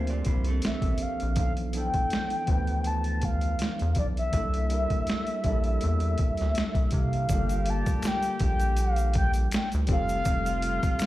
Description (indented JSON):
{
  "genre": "R&B, neo-soul",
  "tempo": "81 BPM",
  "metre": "4/4",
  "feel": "swing 55% on 16ths",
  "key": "unclear",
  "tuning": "A4 = 437 Hz",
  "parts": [
    { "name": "electric guitar through a small old amp", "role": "second line", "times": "0.0-1.3 s", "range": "C4 to D5", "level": "-38 LUFS", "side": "right 7 dB", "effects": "slapback echo" },
    { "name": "tine electric piano", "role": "accompaniment", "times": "0.0-11.1 s", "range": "E3 to C5", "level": "-33 LUFS", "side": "left 1 dB", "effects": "medium stereo tremolo, slapback echo" },
    { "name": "rubbery square bass", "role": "bass", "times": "0.0-10.8 s", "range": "F1 to C3", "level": "-27 LUFS", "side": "equal", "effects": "none" },
    { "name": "boom bap sampler-style drum kit", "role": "drums", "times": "0.1-11.1 s", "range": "hi-hat, kick drum, snare drum", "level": "-29 LUFS", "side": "equal", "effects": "overdrive" },
    { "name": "mellow horn-like synth lead", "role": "melody", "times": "0.7-11.1 s", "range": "D5 to A5", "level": "-31 LUFS", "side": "left 1 dB", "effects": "chorus, slapback echo" },
    { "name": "clear horn section", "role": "stabs", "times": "7.3-11.1 s", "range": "C3 to G4", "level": "-38 LUFS", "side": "right 2 dB", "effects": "slapback echo" },
    { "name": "tube shaker and finger snaps", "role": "percussion", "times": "7.3-11.1 s", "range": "none", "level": "-42 LUFS", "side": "left 2 dB", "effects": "none" }
  ],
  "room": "digital ambience",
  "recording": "live gig heard through the venue's PA, club reverb",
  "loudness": "-24 LUFS",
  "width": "side -15 dB against mid",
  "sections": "0.0-7.3 A section; 7.3-11.1 B section",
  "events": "none",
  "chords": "0.0 Bbmaj9; 1.4 G13/B; 4.3 C13; 7.3 Gm9; 9.9 Fadd9",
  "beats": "0.63 | 1.37 2.11 2.85 3.59 | 4.33 5.07 5.81 6.55 | 7.29 8.03 8.78 9.52 | 10.26 11.00"
}